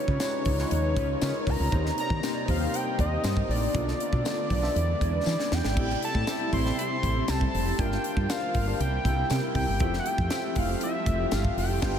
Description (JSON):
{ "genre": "polished 1980s jazz-funk pop", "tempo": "119 BPM", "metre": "4/4", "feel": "straight", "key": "unclear", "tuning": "A4 = 440 Hz", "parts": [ { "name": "fat analog lead", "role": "melody", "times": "0.0-12.0 s", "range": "Db5 to C6", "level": "-30 LUFS", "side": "equal", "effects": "analog delay" }, { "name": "tine electric piano", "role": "accompaniment", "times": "0.0-12.0 s", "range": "Ab3 to F5", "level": "-33 LUFS", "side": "left 3 dB", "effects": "medium stereo tremolo, ensemble chorus" }, { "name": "warm studio string section", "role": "sustained chords", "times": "0.0-12.0 s", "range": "C3 to F4", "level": "-37 LUFS", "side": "equal", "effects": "none" }, { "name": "mellow electric guitar", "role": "riff", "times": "0.1-12.0 s", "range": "A3 to D5", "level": "-36 LUFS", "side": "right 3 dB", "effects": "lush chorus" }, { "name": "woody fretless electric bass", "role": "bass", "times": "0.1-12.0 s", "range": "F1 to E3", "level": "-28 LUFS", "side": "equal", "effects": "wide subtle chorus" }, { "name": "tight funk drum kit", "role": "drums", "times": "0.1-12.0 s", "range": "crash cymbal, hi-hat, kick drum, snare drum", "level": "-31 LUFS", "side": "equal", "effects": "none" }, { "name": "tambourine", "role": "percussion", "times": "0.2-11.4 s", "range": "none", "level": "-48 LUFS", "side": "left 7 dB", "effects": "none" } ], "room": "moderate huge ambient reverb, RT60 7.8 s", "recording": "dreamy mix soaked in reverb", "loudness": "-24 LUFS", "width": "side -8 dB against mid", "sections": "0.0-12.0 A section", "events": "drum fill 5.3-5.8; band accent 11.8", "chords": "0.0 Db9; 1.7 Eb6; 3.7 Bm7b5; 4.8 E7; 5.8 Am7; 7.8 Gm7; 8.8 C7; 9.8 Fmaj9", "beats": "0.20 0.71 1.21 | 1.72 2.23 2.73 3.24 | 3.74 4.25 4.75 5.26 | 5.77 6.27 6.78 7.28 | 7.79 8.29 8.80 9.30 | 9.81 10.31 10.82 11.32 | 11.83" }